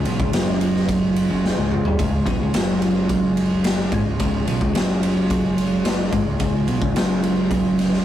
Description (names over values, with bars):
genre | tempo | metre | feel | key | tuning
psychedelic rock | 109 BPM | 4/4 | straight | Db major | A4 = 441 Hz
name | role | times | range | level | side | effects
hand-pumped harmonium | sustained chords | 0.0-8.0 s | Ab3 to F4 | -29 LUFS | right 3 dB | none
twelve-string electric guitar | riff | 0.0-8.0 s | Db2 to Cb3 | -20 LUFS | equal | phaser
growling fingered electric bass | bass | 0.0-8.0 s | Db1 to Cb2 | -29 LUFS | equal | overdrive
raw garage drum kit | drums | 0.1-8.0 s | kick drum, ride cymbal, snare drum, toms | -23 LUFS | equal | none
room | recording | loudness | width
moderate small room reverb, RT60 0.5 s | rough rehearsal-room recording, warm saturation | -18 LUFS | side -11 dB against mid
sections
0.0-8.0 A section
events
drum fill 1.4-2.0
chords
0.0 Db